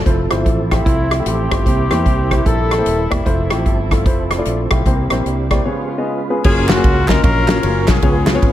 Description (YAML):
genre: uptempo gospel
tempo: 150 BPM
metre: 4/4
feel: swing 63% on 8ths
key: F major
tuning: A4 = 440 Hz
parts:
  - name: tonewheel organ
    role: sustained chords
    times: 0.0-8.5 s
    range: F3 to E#5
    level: -24 LUFS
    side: right 5 dB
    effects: slow rotary speaker, chorus vibrato
  - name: fingered electric bass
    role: bass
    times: 0.0-8.5 s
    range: Eb1 to E2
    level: -20 LUFS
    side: equal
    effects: none
  - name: warm baby grand piano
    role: accompaniment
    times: 0.1-8.5 s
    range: C3 to Eb5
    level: -21 LUFS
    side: left 3 dB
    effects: none
  - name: muted French horn section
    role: sustained chords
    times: 0.1-6.4 s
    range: F3 to F4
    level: -32 LUFS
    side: right 1 dB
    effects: none
  - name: natural country drum kit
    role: drums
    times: 0.1-8.5 s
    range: crash cymbal, hi-hat, kick drum, ride cymbal, rim click, snare drum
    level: -16 LUFS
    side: equal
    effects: none
  - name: breathy alto saxophone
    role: melody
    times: 0.8-3.1 s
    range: E4 to A4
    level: -24 LUFS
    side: right 4 dB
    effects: none
  - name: warm horn section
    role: melody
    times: 0.9-3.2, 6.5-8.5 s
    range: A3 to A#4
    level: -20 LUFS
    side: left 3 dB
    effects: none
  - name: group handclap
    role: percussion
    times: 6.7-8.3 s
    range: none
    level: -29 LUFS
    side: right 3 dB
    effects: none
room: light reverb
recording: none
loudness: -13 LUFS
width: side -12 dB against mid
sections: 0.1-6.4 A section; 6.4-8.5 B section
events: break 5.7-6.4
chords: 0.1 Fmaj7; 1.7 C7; 3.3 Fmaj7; 4.9 C7; 5.7 Db7; 6.4 F#maj7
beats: | 0.06 0.46 0.86 1.26 | 1.66 2.06 2.46 2.86 | 3.26 3.66 4.06 4.46 | 4.85 5.25 5.65 6.05 | 6.45 6.84 7.24 7.63 | 8.03 8.43